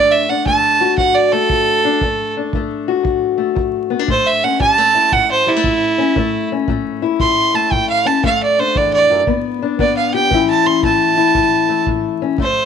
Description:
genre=acoustic country blues, solo or duo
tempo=116 BPM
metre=4/4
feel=swing 65% on 8ths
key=D major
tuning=A4 = 440 Hz
part: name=bright fiddle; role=melody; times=0.0-12.7 s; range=E4 to C6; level=-14 LUFS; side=right 4 dB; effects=none
part: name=fingerpicked steel-string acoustic guitar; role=accompaniment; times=0.0-12.7 s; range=D2 to G4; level=-18 LUFS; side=left 10 dB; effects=none
part: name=kick drum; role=drums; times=0.5-12.5 s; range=none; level=-24 LUFS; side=right 1 dB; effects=none
room=light reverb, small room ambience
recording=1960s-style stereo, vinyl crackle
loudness=-13 LUFS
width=side -7 dB against mid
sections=0.0-12.4 A section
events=none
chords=0.0 D; 4.1 A; 8.2 D; 9.3 G; 10.3 A

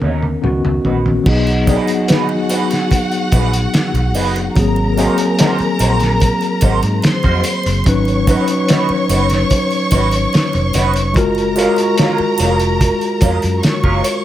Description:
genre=lush 1970s-style soul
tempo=73 BPM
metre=4/4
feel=straight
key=unclear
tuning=A4 = 439 Hz
part: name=tine electric piano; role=accompaniment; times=0.0-14.2 s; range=D#3 to B4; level=-17 LUFS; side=left 2 dB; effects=medium stereo tremolo
part: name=electric guitar through a small old amp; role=riff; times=0.0-14.1 s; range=F#3 to B#4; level=-23 LUFS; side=right 5 dB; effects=wah, lush chorus
part: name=vintage muted fingered electric bass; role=bass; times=0.0-14.0 s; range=E#1 to G#2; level=-18 LUFS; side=equal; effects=none
part: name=cloth-damped thuddy drum kit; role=drums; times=0.0-14.2 s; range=crash cymbal, hi-hat, kick drum, snare drum, toms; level=-17 LUFS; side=equal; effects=none
part: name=warm symphonic violin section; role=second line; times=1.2-14.2 s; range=F#4 to C#6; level=-20 LUFS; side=equal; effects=none
part: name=triangle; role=percussion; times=1.3-14.2 s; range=none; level=-32 LUFS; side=right 5 dB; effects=none
part: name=vibraphone with soft mallets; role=texture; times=1.3-6.2, 11.6-13.0 s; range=D#5 to C#6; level=-28 LUFS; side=left 1 dB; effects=none
room=light reverb, small room ambience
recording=none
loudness=-12 LUFS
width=side -12 dB against mid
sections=0.0-1.3 A section; 1.3-14.2 B section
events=drum fill 0.0-1.3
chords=0.4 C#9sus4; 1.3 B6; 4.6 G#9; 7.9 C#9sus4; 11.2 F#maj9

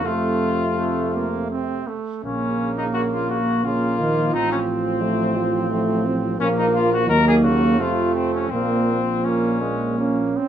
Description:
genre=classical, brass quintet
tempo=85 BPM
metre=3/4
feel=uneven beats, rubato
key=Bb minor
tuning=A4 = 440 Hz
part: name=clear trumpet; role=melody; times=0.0-10.4 s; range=C4 to Bb4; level=-24 LUFS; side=left 5 dB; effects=none
part: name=warm trumpet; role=second line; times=0.0-10.5 s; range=Ab3 to C4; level=-27 LUFS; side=right 6 dB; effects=none
part: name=clear French horn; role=accompaniment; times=0.0-10.3 s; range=F3 to Db4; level=-26 LUFS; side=left 2 dB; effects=none
part: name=warm euphonium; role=accompaniment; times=0.0-10.5 s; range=Bb2 to Db4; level=-25 LUFS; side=right 3 dB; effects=none
part: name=mellow tuba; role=bass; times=0.0-10.4 s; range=A1 to F2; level=-24 LUFS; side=right 2 dB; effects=none
room=light reverb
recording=small room ambience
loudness=-18 LUFS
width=side -9 dB against mid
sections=0.0-10.5 A section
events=none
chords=0.0 F; 2.2 Bbm; 4.3 F/A; 6.4 Bb5; 7.1 Ebm; 7.8 F; 8.5 Bbm

